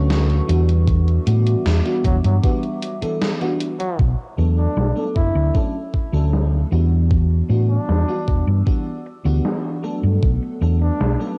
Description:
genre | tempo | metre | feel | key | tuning
vaporwave | 77 BPM | 4/4 | straight | unclear | A4 = 441 Hz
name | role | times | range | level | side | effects
FM electric piano with soft pad layer | accompaniment | 0.0-11.4 s | D3 to A4 | -27 LUFS | equal | lush chorus, cassette tape, analog delay
warbly tape-like pad | sustained chords | 0.0-11.4 s | G3 to E6 | -39 LUFS | equal | chorus, built-in reverb, vintage 12-bit sampler grit, cassette tape
hollow-body short-scale fingered electric bass | bass | 0.0-11.1 s | E1 to A2 | -19 LUFS | equal | none
gated 80s digital drum machine | drums | 0.1-11.4 s | hi-hat, snare drum | -28 LUFS | equal | gated reverb, gated reverb snare, low-pass filter on hats, small room ambience, cassette tape, low-pass filter on snare
electronic kick drum | drums | 0.9-10.4 s | none | -21 LUFS | equal | small room ambience, cassette tape
mellow flugelhorn | melody | 2.0-11.3 s | F#3 to E4 | -32 LUFS | equal | cassette tape, tape echo
room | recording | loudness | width
light reverb | home recording on cassette | -19 LUFS | mono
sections
0.0-4.0 A section; 4.0-11.4 B section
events
none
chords
0.0 Dmaj7; 0.9 Em9; 4.0 Bm7; 5.6 Dmaj7; 7.1 Em9; 10.2 Bm7

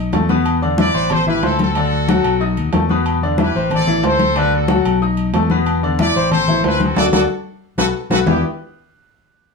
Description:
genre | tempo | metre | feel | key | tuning
latin, salsa | 184 BPM | 4/4 | straight | E minor | A4 = 440 Hz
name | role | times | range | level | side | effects
bright grand piano | accompaniment | 0.0-8.4 s | B2 to D#6 | -19 LUFS | left 3 dB | none
fingered electric bass | bass | 0.0-8.4 s | A1 to E2 | -20 LUFS | left 2 dB | none
congas | percussion | 0.1-8.3 s | none | -21 LUFS | left 3 dB | none
timbales and agogo bells | percussion | 0.1-8.3 s | none | -24 LUFS | right 3 dB | none
bright trumpet section | melody | 0.8-8.4 s | E4 to D5 | -20 LUFS | equal | none
room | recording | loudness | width
wet studio reverb, RT60 0.6 s | none | -14 LUFS | side -4 dB against mid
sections
0.0-8.3 A section; 8.3-9.5 B section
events
drum fill 7.0-8.3; band accent 7.0-8.3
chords
0.5 E5; 1.1 Am; 1.8 D; 2.4 B7; 3.1 Em7; 3.7 Am; 4.4 D; 5.0 B7; 5.7 E5; 6.3 Am; 7.0 D; 7.6 B5; 8.3 Em7

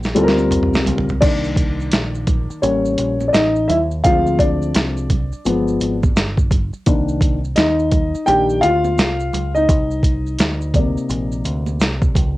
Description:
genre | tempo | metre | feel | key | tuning
hip hop, jazz-hop | 85 BPM | 4/4 | swing 63% on 16ths | C minor | A4 = 440 Hz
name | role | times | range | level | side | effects
deep dub picked electric bass | bass | 0.0-12.4 s | G1 to Eb2 | -23 LUFS | equal | none
maracas and congas | percussion | 0.0-12.4 s | none | -32 LUFS | right 6 dB | none
dark concert grand piano | accompaniment | 0.1-12.4 s | C3 to G5 | -18 LUFS | left 1 dB | cassette tape
boom bap sampler-style drum kit | drums | 0.1-12.4 s | crash cymbal, hi-hat, kick drum, snare drum, toms | -18 LUFS | equal | none
room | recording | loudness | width
moderate small room reverb, RT60 0.5 s | home recording on cassette | -15 LUFS | side -17 dB against mid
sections
0.0-1.2 A section; 1.2-12.4 A section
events
drum fill 0.0-1.2; grand piano solo 1.2-12.4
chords
0.0 C7sus2; 1.2 Cm9; 2.6 A7b9; 4.0 Dm7b5; 5.5 G7b9; 6.9 Cm9

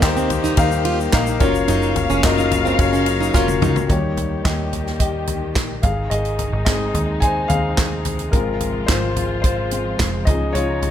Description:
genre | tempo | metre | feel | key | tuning
piano-driven pop | 108 BPM | 4/4 | straight | unclear | A4 = 440 Hz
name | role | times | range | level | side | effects
warm concert grand piano | accompaniment | 0.0-10.9 s | Eb3 to Ab5 | -21 LUFS | left 4 dB | none
muted studio string section | sustained chords | 0.0-10.9 s | C3 to F5 | -27 LUFS | left 2 dB | none
plucky analog bass | bass | 0.0-10.9 s | F1 to Eb2 | -23 LUFS | right 1 dB | none
natural country drum kit | drums | 0.0-10.9 s | handclaps, hi-hat, kick drum, ride cymbal, snare drum, toms | -21 LUFS | equal | none
tube shaker | percussion | 0.0-3.9 s | none | -36 LUFS | left 9 dB | none
fingerpicked plugged-in steel-string acoustic guitar | riff | 0.2-3.8 s | C4 to F4 | -24 LUFS | right 8 dB | none
room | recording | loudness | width
light reverb, studio reverb | none | -16 LUFS | side -10 dB against mid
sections
0.0-3.9 A section; 3.9-10.9 B section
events
drum fill 3.3-3.9; grand piano solo 3.9-10.9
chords
0.0 Eb; 1.4 Gbmaj7; 3.9 Eb; 5.8 Ab; 8.3 Fm/Ab; 10.3 Dbadd9

